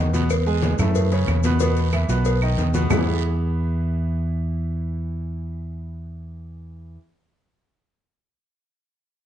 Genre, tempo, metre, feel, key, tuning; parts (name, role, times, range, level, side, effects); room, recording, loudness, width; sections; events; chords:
latin, salsa; 184 BPM; 4/4; straight; E major; A4 = 440 Hz
clear baby grand piano; accompaniment; 0.0-7.0 s; A2 to G#5; -27 LUFS; right 1 dB
fingered electric bass; bass; 0.0-7.0 s; B1 to F#2; -22 LUFS; equal
congas; percussion; 0.1-3.0 s; -28 LUFS; left 1 dB
guiro; percussion; 0.1-3.0 s; -37 LUFS; right 8 dB
maracas; percussion; 0.1-3.0 s; -39 LUFS; left 8 dB
claves; percussion; 0.3-3.0 s; -32 LUFS; right 3 dB
cowbell and bongos; percussion; 0.3-3.0 s; -28 LUFS; left 4 dB
light reverb; dark, warm production, nothing above 10.5 kHz; -19 LUFS; side -10 dB against mid
0.3-2.9 A section; 2.9-5.5 B section
0.3 E; 1.0 F#m7; 1.6 E5; 2.3 B; 2.9 E